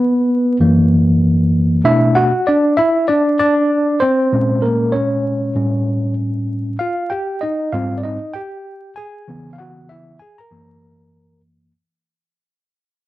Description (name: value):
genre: hip hop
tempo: 97 BPM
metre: 4/4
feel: swing 62% on 16ths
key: unclear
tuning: A4 = 440 Hz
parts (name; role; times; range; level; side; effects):
- tine electric piano; solo; 0.0-11.7 s; F#2 to A#5; -14 LUFS; equal; overdrive, fast stereo tremolo, cassette tape
room: light reverb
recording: home recording on cassette, vinyl crackle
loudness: -14 LUFS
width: side -16 dB against mid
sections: 0.0-1.9 A section; 1.9-11.7 B section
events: tine electric piano solo 0.0-1.9, 1.9-11.7; fade-out 1.9-11.7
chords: 0.0 N.C.; 0.6 F#7; 1.9 Bm7; 4.3 A#m9; 5.6 A7; 6.8 G#maj7; 9.3 C#m7; 10.5 F#7